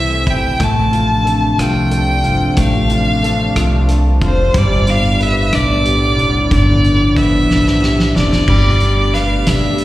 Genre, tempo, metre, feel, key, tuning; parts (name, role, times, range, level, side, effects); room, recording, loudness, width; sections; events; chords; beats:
six-eight pop ballad; 61 BPM (dotted quarters); 6/8; straight; A4 = 438 Hz
clear violin; melody; 0.0-9.8 s; C5 to A5; -18 LUFS; equal; slapback echo
clear grand piano; accompaniment; 0.0-9.8 s; D3 to C5; -19 LUFS; left 2 dB; slapback echo
sweeping resonant pad; sustained chords; 0.0-9.8 s; A2 to G4; -21 LUFS; right 1 dB; chorus
upright bass; bass; 0.0-9.8 s; F1 to C2; -15 LUFS; equal
loose indie drum kit; drums; 0.3-9.8 s; crash cymbal, hi-hat, kick drum, rim click, snare drum; -20 LUFS; equal
small room reverb; live gig heard through the venue's PA, recital hall reverb; -11 LUFS; side -15 dB against mid
0.0-8.5 A section; 8.5-9.8 B section
drum fill 7.5-8.5
0.0 Am; 0.6 Dm7; 4.5 Gadd9
| 0.60 1.58 | 2.57 3.56 | 4.54 5.53 | 6.51 7.50 | 8.48 9.46